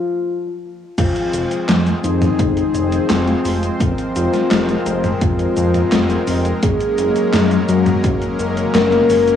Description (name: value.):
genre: synthwave.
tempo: 85 BPM.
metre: 4/4.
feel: straight.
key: F phrygian.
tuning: A4 = 440 Hz.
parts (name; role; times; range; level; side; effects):
soft octave-layered synth lead; melody; 0.0-9.4 s; Eb4 to Bb4; -20 LUFS; left 2 dB; chorus, cassette tape, tape echo.
soft supersaw; sustained chords; 1.0-9.4 s; F3 to C5; -20 LUFS; left 1 dB; sidechain pumping, cassette tape.
fat analog bass; bass; 1.0-9.3 s; F1 to Gb2; -20 LUFS; left 1 dB; sidechain pumping.
electronic kick drum; drums; 1.0-8.2 s; none; -20 LUFS; equal; none.
gated 80s digital drum machine; drums; 1.0-9.4 s; cabasa, crash cymbal, handclaps, hi-hat, snare drum, toms; -20 LUFS; equal; gated reverb, gated reverb snare, overdrive.
room: moderate spring reverb, RT60 2.4 s.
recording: home recording on cassette, small room ambience.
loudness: -14 LUFS.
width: side -9 dB against mid.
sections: 1.0-9.4 A section.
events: break 0.0-1.0.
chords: 0.0 N.C.; 1.0 Fm; 6.6 Gbadd9.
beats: 0.28 | 0.98 1.69 2.39 3.10 | 3.81 4.51 5.22 5.92 | 6.63 7.33 8.04 8.75.